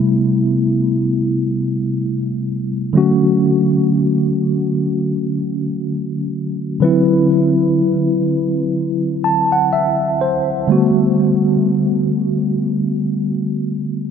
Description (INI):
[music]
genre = R&B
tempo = free time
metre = none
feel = none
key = D major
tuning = A4 = 442 Hz
[part]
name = mellow tine electric piano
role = solo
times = 0.0-14.1 s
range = C3 to A5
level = -14 LUFS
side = equal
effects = medium stereo tremolo
[sound]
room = wet huge ambient reverb, RT60 4.0 s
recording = dreamy mix soaked in reverb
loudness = -15 LUFS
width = side -7 dB against mid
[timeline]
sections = 0.0-14.1 A section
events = tine electric piano fill 8.8-10.7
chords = 0.0 Am9; 2.9 Dmaj7; 6.8 D13; 10.7 Gmaj9